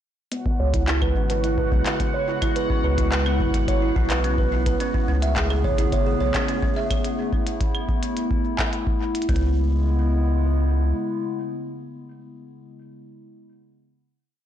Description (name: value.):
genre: IDM.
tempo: 107 BPM.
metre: 4/4.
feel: straight.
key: C# minor.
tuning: A4 = 440 Hz.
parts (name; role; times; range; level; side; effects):
warbly tape-like pad; sustained chords; 0.3-12.3 s; C#3 to G#4; -28 LUFS; left 1 dB; chorus, built-in reverb.
buzzing kalimba; arpeggios; 0.3-9.5 s; B3 to E5; -28 LUFS; right 4 dB; low-pass filter, tape echo.
glitchy drum kit; drums; 0.3-9.4 s; claves, handclaps, hi-hat; -29 LUFS; left 1 dB; digital delay.
bubbling stepped-filter texture; texture; 0.3-7.1 s; F#4 to F#5; -33 LUFS; left 2 dB; chorus, built-in reverb.
electronic kick drum; drums; 0.5-9.4 s; none; -25 LUFS; equal; none.
round analog bass; bass; 0.6-10.9 s; G#1 to C#2; -22 LUFS; equal; none.
room: light reverb, digital ambience.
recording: blown-out, overdriven recording, overdrive, nothing above 10.6 kHz.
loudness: -20 LUFS.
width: side -10 dB against mid.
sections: 0.3-9.3 groove; 9.3-11.5 final chord.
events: filter sweep on kalimba 0.3-7.0.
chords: 0.3 C#m7; 4.8 Amaj7; 7.0 B7sus4; 9.3 C#m7.